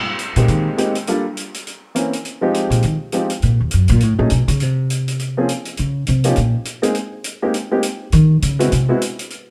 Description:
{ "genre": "jazz, small-group swing and bop", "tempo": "204 BPM", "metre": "4/4", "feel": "swing 60% on 8ths", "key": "Ab major", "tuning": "A4 = 440 Hz", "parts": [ { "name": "hi-hat", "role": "drums", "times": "0.2-9.4 s", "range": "none", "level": "-29 LUFS", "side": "equal", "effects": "none" }, { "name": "warm upright piano", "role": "accompaniment", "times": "0.4-9.0 s", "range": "E3 to Bb4", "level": "-22 LUFS", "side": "equal", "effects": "none" }, { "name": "upright bass", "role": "bass", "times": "0.4-0.7, 2.7-8.9 s", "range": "Eb2 to Eb3", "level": "-17 LUFS", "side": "equal", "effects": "none" } ], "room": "light reverb", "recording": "none", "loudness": "-18 LUFS", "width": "mono", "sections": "0.0-9.3 A section", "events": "upright bass solo 0.0-9.5", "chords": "0.0 Abmaj9; 1.1 Gm9; 1.7 C7b9; 2.3 Fm7; 3.4 Ebm; 4.0 B13; 4.6 N.C.; 5.8 Eb7(no3); 7.0 Abmaj9; 8.1 Ebm7; 8.7 Ab7alt", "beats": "0.19 0.49 0.78 | 1.07 1.37 1.66 1.96 | 2.25 2.55 2.84 3.13 | 3.43 3.72 4.02 4.31 | 4.60 4.90 5.19 5.49 | 5.78 6.07 6.37 6.66 | 6.96 7.25 7.54 7.84 | 8.13 8.43 8.72 9.01 | 9.31" }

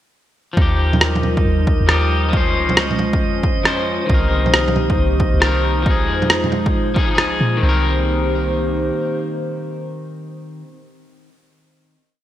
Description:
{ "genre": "future garage", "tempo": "136 BPM", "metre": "4/4", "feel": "swing 64% on 16ths", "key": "C phrygian", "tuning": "A4 = 440 Hz", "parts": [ { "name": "electric guitar at the edge of break-up", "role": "accompaniment", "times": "0.5-10.7 s", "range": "Eb3 to C5", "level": "-22 LUFS", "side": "left 3 dB", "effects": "sidechain pumping, digital delay" }, { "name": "dark analog pad", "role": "sustained chords", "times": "0.6-10.7 s", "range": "G3 to C5", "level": "-23 LUFS", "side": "right 1 dB", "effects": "chorus, sidechain pumping" }, { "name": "soft 808-style bass", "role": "bass", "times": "0.6-8.9 s", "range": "C2 to Bb2", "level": "-20 LUFS", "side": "equal", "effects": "sidechain pumping" }, { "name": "electronic kick drum", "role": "drums", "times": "0.6-7.1 s", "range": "none", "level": "-18 LUFS", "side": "equal", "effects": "overdrive, studio reverb" }, { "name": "drifting glass-harmonics texture", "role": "texture", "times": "1.1-7.6 s", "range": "Eb5", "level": "-30 LUFS", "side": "right 2 dB", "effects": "chorus, built-in reverb" }, { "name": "electronic bongos and rim click", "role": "drums", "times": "0.9-7.3 s", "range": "none", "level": "-18 LUFS", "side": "right 1 dB", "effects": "studio reverb" } ], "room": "moderate lush hall reverb, RT60 1.6 s, digital ambience", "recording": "bright 1980s-style digital production", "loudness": "-15 LUFS", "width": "side -12 dB against mid", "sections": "0.6-7.6 groove; 7.6-11.2 final chord", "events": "none", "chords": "0.6 Ebadd9; 2.3 Dbmaj7; 4.1 Cm7; 5.9 Fm7; 7.6 Cm7", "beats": "| 0.57 1.01 1.45 1.89 | 2.33 2.77 3.21 3.66 | 4.10 4.54 4.98 5.42 | 5.86 6.30 6.74 7.19 | 7.63 8.07 8.51 8.95 | 9.39 9.83 10.27 10.71" }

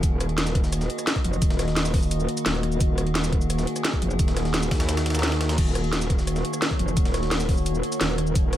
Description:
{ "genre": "dark technical drum and bass", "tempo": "173 BPM", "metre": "4/4", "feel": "straight", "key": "Eb minor", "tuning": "A4 = 435 Hz", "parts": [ { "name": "metallic inharmonic drone", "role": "sustained chords", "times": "0.0-8.6 s", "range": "Eb3 to Eb5", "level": "-29 LUFS", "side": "equal", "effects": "chorus, built-in reverb, sidechain pumping" }, { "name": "metallic wobble bass", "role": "bass", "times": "0.0-8.6 s", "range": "Eb1 to Eb2", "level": "-25 LUFS", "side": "equal", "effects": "chorus, overdrive" }, { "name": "breakbeat sampler-style drum kit", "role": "drums", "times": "0.0-8.6 s", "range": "hi-hat, snare drum", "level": "-35 LUFS", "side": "equal", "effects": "high-pass filter on hats, high-pass filter on snare" }, { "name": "drum and bass drum kit", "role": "drums", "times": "0.0-8.6 s", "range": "cabasa, crash cymbal, hi-hat, rim click, snare drum", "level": "-28 LUFS", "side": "equal", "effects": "none" }, { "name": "electronic kick drum", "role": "drums", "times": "0.0-8.4 s", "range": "none", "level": "-23 LUFS", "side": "equal", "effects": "overdrive" } ], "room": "digital ambience", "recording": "none", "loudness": "-21 LUFS", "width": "side -12 dB against mid", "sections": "0.0-8.6 A section", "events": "kick drops out 5.2-5.6", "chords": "0.0 Ebm", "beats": "| 0.03 0.38 0.72 1.07 | 1.42 1.76 2.11 2.46 | 2.81 3.15 3.50 3.85 | 4.19 4.54 4.89 5.23 | 5.58 5.93 6.27 6.62 | 6.97 7.31 7.66 8.01 | 8.35" }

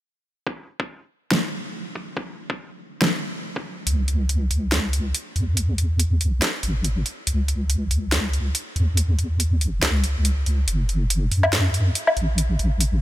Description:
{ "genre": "deep dubstep", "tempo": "141 BPM", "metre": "4/4", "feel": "swing 56% on 16ths, half-time", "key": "C# minor", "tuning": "A4 = 440 Hz", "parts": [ { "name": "electronic kick drum", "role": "drums", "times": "0.5-3.6 s", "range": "none", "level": "-30 LUFS", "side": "equal", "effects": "high-pass filter on kick, high-pass filter on room" }, { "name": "deep house drum kit", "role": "drums", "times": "1.3-12.9 s", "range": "hi-hat, snare drum, woodblock", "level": "-24 LUFS", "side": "equal", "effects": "overdrive, high-pass filter on snare, high-pass filter on hats, high-pass filter on perc" }, { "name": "deep soft wobble bass", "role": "bass", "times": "3.9-13.0 s", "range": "F#1 to F#2", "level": "-20 LUFS", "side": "equal", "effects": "chorus" } ], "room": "digital ambience", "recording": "none", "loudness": "-20 LUFS", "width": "side -14 dB against mid", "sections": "0.5-3.9 A section; 3.9-13.0 B section", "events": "build-up 3.9-13.0", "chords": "none", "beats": "| 0.46 0.89 1.31 1.74 | 2.17 2.59 3.02 3.44 | 3.87 4.29 4.72 5.14 | 5.57 6.00 6.42 6.85 | 7.27 7.70 8.12 8.55 | 8.97 9.40 9.83 10.25 | 10.68 11.10 11.53 11.95 | 12.38 12.80" }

